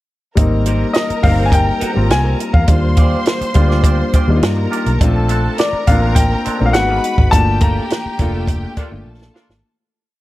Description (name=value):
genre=lush 1970s-style soul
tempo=104 BPM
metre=4/4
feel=straight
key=unclear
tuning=A4 = 440 Hz
part: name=clear studio string section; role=second line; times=0.4-9.6 s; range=G4 to C6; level=-25 LUFS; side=right 1 dB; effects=none
part: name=warm grand piano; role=accompaniment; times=0.4-9.7 s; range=G3 to Gb4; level=-20 LUFS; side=left 2 dB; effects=none
part: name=vintage muted fingered electric bass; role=bass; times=0.4-9.6 s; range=F1 to G2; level=-16 LUFS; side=equal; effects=none
part: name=compact cocktail drum kit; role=drums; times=0.4-9.6 s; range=hi-hat, kick drum, snare drum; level=-15 LUFS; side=equal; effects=none
part: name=electric guitar through a small old amp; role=riff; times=0.7-9.5 s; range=Bb3 to D5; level=-27 LUFS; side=right 2 dB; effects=phaser
part: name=clear baby grand piano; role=melody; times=0.9-8.4 s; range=D5 to Bb5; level=-20 LUFS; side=left 3 dB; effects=slapback echo
part: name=warm horn section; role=stabs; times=8.8-9.5 s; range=Bb3 to F4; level=-37 LUFS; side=left 2 dB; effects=none
room=small room ambience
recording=none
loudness=-12 LUFS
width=side -17 dB against mid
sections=0.4-9.6 pre-chorus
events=fade-out 7.3-9.6; band accent 7.3-9.6; drum fill 9.1-9.6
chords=0.4 Abmaj9; 2.7 Ebmaj9; 5.0 Bbmaj9; 6.7 Abm9; 7.3 Gm9